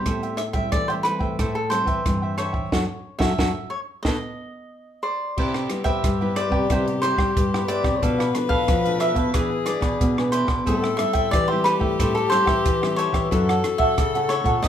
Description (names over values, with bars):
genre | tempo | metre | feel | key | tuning
samba and choro | 90 BPM | 4/4 | straight | C major | A4 = 440 Hz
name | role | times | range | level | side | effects
cavaquinho | melody | 0.0-14.7 s | A4 to F5 | -25 LUFS | equal | none
cavaquinho | accompaniment | 0.0-14.7 s | D4 to G5 | -29 LUFS | right 3 dB | none
nylon-string guitar | accompaniment | 0.0-14.7 s | G2 to A4 | -29 LUFS | left 2 dB | none
nylon-string guitar | bass | 0.1-14.7 s | F#2 to A3 | -27 LUFS | equal | none
compact cocktail drum kit | drums | 0.1-14.7 s | crash cymbal, hi-hat, kick drum, rim click, snare drum | -25 LUFS | right 1 dB | none
breathy tenor saxophone | second line | 5.4-14.7 s | G4 to Db5 | -26 LUFS | left 8 dB | none
room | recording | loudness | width
moderate large studio reverb, RT60 0.8 s | minimal, uncompressed stereo recording | -20 LUFS | side -9 dB against mid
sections
0.0-5.4 A section; 5.4-14.7 B section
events
band accent 2.7-5.4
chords
0.1 Am7; 2.7 F#m; 4.1 B7; 5.4 Cmaj7; 8.0 Bm7b5; 9.4 E7; 10.7 Am7; 13.3 F#m7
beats
| 0.06 0.73 1.39 2.06 | 2.72 3.39 4.05 4.71 | 5.38 6.04 6.70 7.37 | 8.03 8.69 9.35 10.01 | 10.68 11.34 12.00 12.66 | 13.32 13.99 14.65